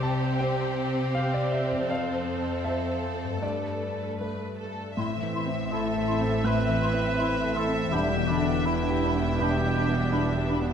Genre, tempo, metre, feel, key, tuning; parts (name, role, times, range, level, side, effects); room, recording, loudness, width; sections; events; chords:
cinematic, emotional film score for orchestra; 81 BPM; 4/4; rubato; A4 = 440 Hz
warm studio violin section; melody; 0.0-10.7 s; B4 to G5; -40 LUFS; left 2 dB
warm studio violin section; second line; 0.0-10.7 s; G4 to E5; -34 LUFS; left 2 dB
clear concert grand piano; accompaniment; 0.0-10.7 s; C2 to A5; -31 LUFS; equal
warm studio viola section; accompaniment; 0.0-10.7 s; A3 to D4; -35 LUFS; right 3 dB
concert harp; arpeggios; 0.0-10.7 s; F2 to B5; -34 LUFS; left 8 dB
rich studio cello section; bass; 0.0-10.7 s; E2 to C3; -33 LUFS; right 2 dB
flute section; second line; 5.0-10.6 s; B5 to C6; -37 LUFS; right 1 dB
warm clarinet; second line; 5.0-10.7 s; D4 to E4; -35 LUFS; equal
warm studio double bass section; bass; 5.0-10.7 s; E1 to A1; -31 LUFS; right 3 dB
mellow cor anglais; melody; 5.7-10.5 s; D4 to B4; -32 LUFS; right 3 dB
mellow French horn section; sustained chords; 5.7-10.5 s; D3 to C4; -33 LUFS; left 4 dB
moderate scoring stage reverb, RT60 1.9 s; close, detailed microphones; -24 LUFS; side -8 dB against mid
0.0-5.0 A section; 5.0-10.7 B section
0.0 C; 1.9 F; 3.4 Gadd9; 5.0 Amadd9; 7.9 Em7